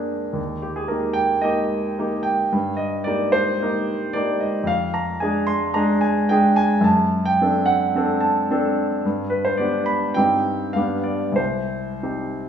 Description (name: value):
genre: classical, romantic character piece for solo piano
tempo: 110 BPM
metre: 4/4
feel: rubato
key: Eb major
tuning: A4 = 440 Hz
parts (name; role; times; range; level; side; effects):
- clear concert grand piano; solo; 0.0-12.5 s; C2 to C6; -19 LUFS; right 1 dB; none
room: moderate recital hall reverb, RT60 1.4 s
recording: studio reverb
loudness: -19 LUFS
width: side -8 dB against mid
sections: 0.0-12.5 A section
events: none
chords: 0.4 Eb; 2.5 Eb/G; 4.7 Ddim/F; 6.9 D7/F#; 9.1 G; 10.2 Cm/G; 10.8 G7; 11.4 Cm